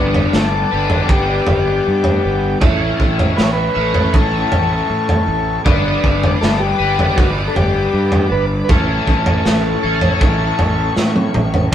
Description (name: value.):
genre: psychedelic rock.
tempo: 79 BPM.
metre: 4/4.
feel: straight.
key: A mixolydian.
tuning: A4 = 440 Hz.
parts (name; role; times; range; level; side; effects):
combo organ; melody; 0.0-10.9 s; D4 to C#5; -20 LUFS; left 3 dB; phaser.
muted studio string section; sustained chords; 0.0-11.7 s; A4 to D6; -26 LUFS; left 1 dB; none.
crunchy overdriven guitar; riff; 0.0-11.7 s; A2 to B4; -20 LUFS; equal; rotary speaker.
fuzz fingered electric bass; bass; 0.0-11.7 s; G1 to A2; -20 LUFS; right 1 dB; overdrive.
crunchy breakbeat drum kit; drums; 0.1-11.7 s; crash cymbal, kick drum, snare drum, toms; -16 LUFS; right 1 dB; none.
room: moderate studio reverb, RT60 0.7 s.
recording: band playing live in one room.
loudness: -13 LUFS.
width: side -10 dB against mid.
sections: 0.0-11.7 A section.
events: drum fill 11.0-11.7.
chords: 0.0 G; 2.6 A; 5.7 G; 8.7 A.